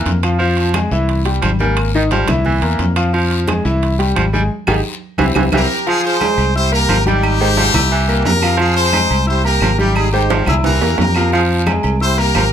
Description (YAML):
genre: latin, salsa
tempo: 176 BPM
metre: 4/4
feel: straight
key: F minor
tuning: A4 = 441 Hz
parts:
  - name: bright baritone saxophone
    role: second line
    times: 0.0-12.4 s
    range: Eb3 to G3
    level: -21 LUFS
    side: right 4 dB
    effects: none
  - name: clear concert grand piano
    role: accompaniment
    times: 0.0-12.5 s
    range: Eb3 to E6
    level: -19 LUFS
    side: left 2 dB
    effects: none
  - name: fingered electric bass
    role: bass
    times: 0.0-12.5 s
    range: Ab1 to F2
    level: -17 LUFS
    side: equal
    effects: none
  - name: congas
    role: percussion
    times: 0.1-12.5 s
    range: none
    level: -24 LUFS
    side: left 2 dB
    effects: none
  - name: guiro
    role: percussion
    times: 0.1-12.5 s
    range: none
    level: -30 LUFS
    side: left 7 dB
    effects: none
  - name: timbales and agogo bells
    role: percussion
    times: 0.1-12.5 s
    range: none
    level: -24 LUFS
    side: right 7 dB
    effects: none
  - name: claves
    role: percussion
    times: 0.2-12.5 s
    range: none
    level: -28 LUFS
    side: right 4 dB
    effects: none
  - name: brilliant horn section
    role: melody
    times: 5.5-12.5 s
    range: Eb4 to C5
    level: -17 LUFS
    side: equal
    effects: none
room: light reverb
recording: close, detailed microphones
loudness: -13 LUFS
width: side -9 dB against mid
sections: 0.0-5.9 A section; 5.9-12.5 B section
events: drum fill 4.5-5.9, 10.3-11.3; band accent 4.5-5.9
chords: 0.4 Fm; 1.1 C7; 1.8 Abmaj7; 2.4 C7; 3.1 Fm; 3.8 C; 4.5 Ab5; 5.2 C7; 5.9 Fm; 6.5 C7; 7.2 Abmaj7; 7.9 C7; 8.6 Fm; 9.3 C7; 10.0 Abmaj7; 10.6 C7; 11.3 Fm; 12.0 C7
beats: 0.06 | 0.40 0.74 1.08 1.42 | 1.76 2.11 2.45 2.79 | 3.13 3.47 3.82 4.16 | 4.50 4.84 5.18 5.52 | 5.87 6.21 6.55 6.89 | 7.23 7.57 7.91 8.25 | 8.59 8.93 9.28 9.62 | 9.96 10.30 10.64 10.98 | 11.32 11.67 12.01 12.35